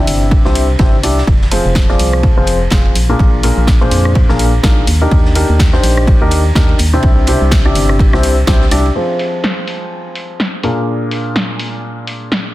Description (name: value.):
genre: piano house.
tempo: 125 BPM.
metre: 4/4.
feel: swing 58% on 16ths.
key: F dorian.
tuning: A4 = 440 Hz.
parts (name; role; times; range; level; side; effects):
clear upright piano; riff; 0.0-12.5 s; Bb2 to D5; -16 LUFS; left 1 dB; sidechain pumping, low-pass filter, tape echo.
organ-like FM bass; bass; 0.0-8.9 s; F1 to F2; -14 LUFS; equal; sidechain pumping.
punchy analog drum machine; drums; 0.1-12.4 s; hi-hat, rim click, snare drum; -20 LUFS; equal; low-pass filter on hats, low-pass filter on snare, low-pass filter on room.
raw garage drum kit; drums; 0.1-8.9 s; ride cymbal, snare drum; -29 LUFS; right 3 dB; high-pass filter on cymbals, high-pass filter on snare, high-pass filter on room.
electronic kick drum; drums; 0.3-8.6 s; none; -12 LUFS; equal; none.
room: small room ambience.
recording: dense, heavily limited modern master.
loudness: -10 LUFS.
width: side -16 dB against mid.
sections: 0.0-9.0 A section; 9.0-12.5 B section.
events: drum fill 8.5-9.0; filter sweep on upright piano 9.0-12.5.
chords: 0.0 Cadd9; 1.3 Fm; 3.0 Bb7; 4.9 Ebmaj7; 7.0 Cadd9; 9.0 Fm; 10.6 Bb7.